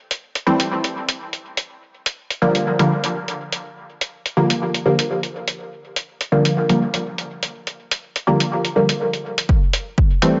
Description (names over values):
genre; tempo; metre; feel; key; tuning
dub techno; 123 BPM; 4/4; swing 54% on 16ths; unclear; A4 = 440 Hz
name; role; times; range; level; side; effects
electronic hi-hat; drums; 0.1-10.3 s; none; -24 LUFS; equal; none
filtered dub chord stab; stabs; 0.5-10.4 s; D3 to C4; -21 LUFS; equal; chorus, phaser, cassette tape, sidechain pumping, dub echo
electronic kick drum; drums; 9.5-10.1 s; none; -18 LUFS; equal; none
room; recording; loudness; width
wet echo chamber reverb, RT60 1.7 s, digital ambience; nothing above 7.7 kHz; -21 LUFS; mono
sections
0.0-9.5 A section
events
none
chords
0.0 Am7; 1.7 Gm7; 9.5 Am7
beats
0.22 0.71 1.20 | 1.69 2.17 2.66 3.15 | 3.64 4.12 4.61 5.10 | 5.59 6.08 6.56 7.05 | 7.54 8.03 8.52 9.00 | 9.49 9.98